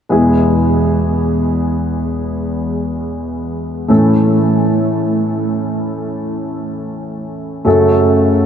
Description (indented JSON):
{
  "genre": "pop",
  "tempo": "free time",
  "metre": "none",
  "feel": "none",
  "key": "E major",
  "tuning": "A4 = 438 Hz",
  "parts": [
    { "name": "warm concert grand piano", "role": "accompaniment", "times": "0.1-8.5 s", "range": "E2 to A4", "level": "-13 LUFS", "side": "equal", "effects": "lush chorus" }
  ],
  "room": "wet huge ambient reverb, RT60 6.4 s",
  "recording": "dreamy mix soaked in reverb",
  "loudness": "-13 LUFS",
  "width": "side -8 dB against mid",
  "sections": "0.1-8.5 A section",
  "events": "none",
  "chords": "0.1 E; 3.9 A; 7.7 F#m",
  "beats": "free time"
}